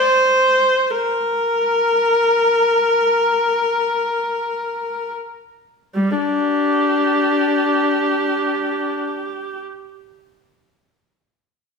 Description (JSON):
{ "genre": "classical, free, expressive piece for unaccompanied viola", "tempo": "free time", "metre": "none", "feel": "none", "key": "G minor", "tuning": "A4 = 439 Hz", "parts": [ { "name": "rich viola", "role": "solo", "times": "0.0-9.6 s", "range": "G3 to C5", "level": "-16 LUFS", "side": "left 1 dB", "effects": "none" } ], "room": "wet stone room reverb, RT60 1.3 s", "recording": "minimal, uncompressed stereo recording", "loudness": "-16 LUFS", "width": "side -4 dB against mid", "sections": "0.0-5.9 A section; 5.9-11.5 B section", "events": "slowing down 0.0-5.9", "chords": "none" }